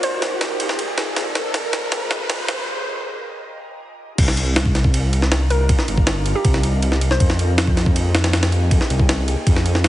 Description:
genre	drum and bass, jungle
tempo	159 BPM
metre	4/4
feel	straight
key	C minor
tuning	A4 = 444 Hz
part	hollow square pluck	melody	0.0-0.3, 5.5-7.2 s	G4 to C5	-27 LUFS	equal	chorus, dub echo
part	ethereal airy pad	sustained chords	0.0-9.9 s	Bb3 to Eb5	-29 LUFS	equal	ensemble chorus, built-in reverb, phaser
part	jungle sampler-style drum kit	drums	0.0-9.9 s	crash cymbal, kick drum, ride cymbal, snare drum	-19 LUFS	equal	high-pass filter on cymbals, studio reverb, high-pass filter on kick, high-pass filter on snare
part	riser	sound effects	0.0-2.7 s	none	-27 LUFS	equal	none
part	dark detuned saw bass	bass	4.2-9.9 s	G1 to F2	-18 LUFS	equal	tube saturation
room	light reverb, digital ambience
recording	heavily compressed radio sound, multiband compression, high-pass filter, nothing above 10.6 kHz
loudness	-16 LUFS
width	side -14 dB against mid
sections	0.0-4.2 A section; 4.2-9.9 B section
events	build-up 0.0-4.2; drum fill 0.0-2.7; riser 0.0-2.7; filter sweep on ambient pad 0.0-4.2; break 2.7-4.2; drop 4.2-9.9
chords	0.0 Cm11; 1.2 Fm11; 4.2 Cm11; 7.2 Fm11

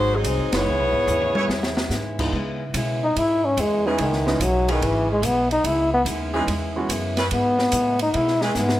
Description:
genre	jazz, big band swing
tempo	144 BPM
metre	4/4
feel	swing 67% on 8ths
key	C# minor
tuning	A4 = 437 Hz
part	clear saxophone section	melody	0.0-1.9 s	F#3 to C#5	-22 LUFS	left 1 dB	none
part	picked steel-string acoustic guitar	accompaniment	0.0-8.8 s	G#2 to E4	-31 LUFS	left 2 dB	none
part	warm baby grand piano	accompaniment	0.0-6.9 s	C#2 to F#4	-28 LUFS	right 2 dB	none
part	upright bass	bass	0.0-8.8 s	F#1 to C#3	-27 LUFS	equal	none
part	open jazz drum kit	drums	0.2-8.8 s	crash cymbal, hi-hat, kick drum, ride cymbal, snare drum, toms	-29 LUFS	right 1 dB	none
part	warm trumpet section	stabs	1.4-1.5 s	E4 to C#5	-30 LUFS	right 2 dB	none
part	warm trombone	melody	3.0-8.8 s	D#3 to E4	-20 LUFS	left 1 dB	none
part	clear saxophone section	sustained chords	3.9-8.5 s	E3 to B4	-28 LUFS	right 1 dB	none
room	moderate large studio reverb, RT60 1.3 s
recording	none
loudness	-19 LUFS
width	side -14 dB against mid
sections	0.0-2.3 A section; 2.3-8.8 B section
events	band accent 0.5; drum fill 1.1-1.9, 8.6; trombone solo 2.3-8.8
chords	0.0 G#7; 0.7 C#m7

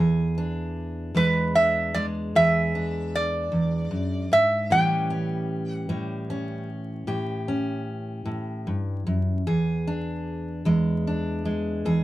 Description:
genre	acoustic country blues, solo or duo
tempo	51 BPM (dotted quarters)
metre	12/8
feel	straight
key	E mixolydian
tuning	A4 = 441 Hz
part	fingerpicked steel-string acoustic guitar	accompaniment	0.0-12.0 s	E2 to G#4	-25 LUFS	right 1 dB	none
part	lap resonator guitar	melody	1.2-6.3 s	B4 to G5	-22 LUFS	right 1 dB	none
room	moderate studio reverb, RT60 0.6 s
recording	vinyl crackle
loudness	-23 LUFS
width	side -15 dB against mid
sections	0.0-12.0 A section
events	none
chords	0.0 E7; 4.7 A7; 9.5 E7

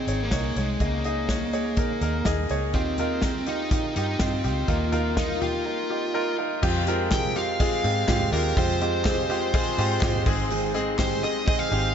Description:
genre	piano-driven pop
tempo	124 BPM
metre	4/4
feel	straight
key	F minor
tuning	A4 = 439 Hz
part	fuzz lead guitar	melody	0.0-11.9 s	Ab3 to G5	-29 LUFS	equal	distortion, diffuse ambient delay
part	bright concert grand piano	accompaniment	0.0-11.9 s	Ab2 to Eb5	-27 LUFS	equal	none
part	vintage muted fingered electric bass	bass	0.1-11.9 s	Ab1 to Ab2	-29 LUFS	equal	none
part	natural country drum kit	drums	0.1-11.8 s	crash cymbal, hi-hat, kick drum, snare drum, toms	-28 LUFS	equal	none
part	swell	sound effects	4.1-5.7 s	none	-38 LUFS	left 4 dB	none
part	fingerpicked plugged-in steel-string acoustic guitar	riff	6.6-11.9 s	F2 to Ab4	-31 LUFS	right 8 dB	none
part	group handclap	percussion	7.1-11.1 s	none	barely audible	none	none
room	moderate huge ambient reverb, RT60 8.0 s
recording	dreamy mix soaked in reverb, nothing above 7.8 kHz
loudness	-22 LUFS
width	side -8 dB against mid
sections	0.0-6.6 A section; 6.6-11.9 B section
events	none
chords	0.0 Dbsus2; 2.7 Ebadd9; 6.6 Fmadd9; 10.3 Ab

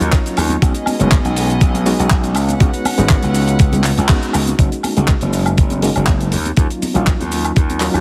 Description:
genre	nu-disco, nu disco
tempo	121 BPM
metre	4/4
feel	swing 53% on 16ths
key	F# major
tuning	A4 = 439 Hz
part	barky reed electric piano	accompaniment	0.0-8.0 s	F#3 to F#4	-23 LUFS	equal	overdrive, fast tremolo, sidechain pumping, low-pass filter, tape echo
part	warm studio string section	sustained chords	0.0-4.6 s	B3 to F#5	-28 LUFS	equal	sidechain pumping
part	gritty slap bass	bass	0.0-8.0 s	F#1 to D#2	-20 LUFS	equal	overdrive
part	damped 70s drum kit	drums	0.0-8.0 s	handclaps, hi-hat, shaker, woodblock	-24 LUFS	equal	none
part	electronic kick drum	drums	0.1-7.7 s	none	-16 LUFS	equal	overdrive
part	congas	percussion	0.1-7.8 s	none	-28 LUFS	equal	none
room	light reverb, studio reverb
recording	heavily compressed radio sound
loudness	-15 LUFS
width	mono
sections	0.0-4.6 A section; 4.6-8.0 B section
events	drop 0.0-4.6; band accent 4.1; filter sweep on reed electric piano 4.6-8.0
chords	0.0 D#m7; 0.6 B6; 2.4 C#7sus4; 4.6 F#69; 6.3 D#m7

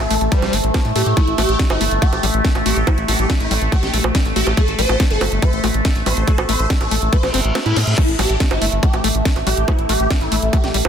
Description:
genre	psychedelic trance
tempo	141 BPM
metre	4/4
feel	straight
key	A phrygian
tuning	A4 = 437 Hz
part	swarming rave lead	melody	0.0-10.7 s	E4 to E5	-23 LUFS	equal	chorus, phaser, sidechain pumping, dub echo
part	overtone-sweeping drone	sustained chords	0.0-10.9 s	A3	-23 LUFS	equal	chorus, built-in reverb, sidechain pumping
part	round analog bass	bass	0.0-10.9 s	G1 to A2	-20 LUFS	equal	none
part	drum and bass drum kit	drums	0.0-10.9 s	bongos, crash cymbal, hi-hat, snare drum	-23 LUFS	right 4 dB	overdrive
part	screaming distorted acid line	riff	0.1-10.8 s	G3 to E4	-26 LUFS	left 7 dB	distortion, chorus, auto-pan, sidechain pumping, dub echo
part	electronic kick drum	drums	0.3-10.6 s	none	-17 LUFS	equal	overdrive
part	reverse cymbal	sound effects	7.3-8.0 s	none	-27 LUFS	left 2 dB	none
room	light reverb, digital ambience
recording	dense, heavily limited modern master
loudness	-14 LUFS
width	side -8 dB against mid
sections	0.0-10.9 A section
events	reverse cymbal 7.3-8.0; kick drops out 7.6-8.0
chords	0.0 A5

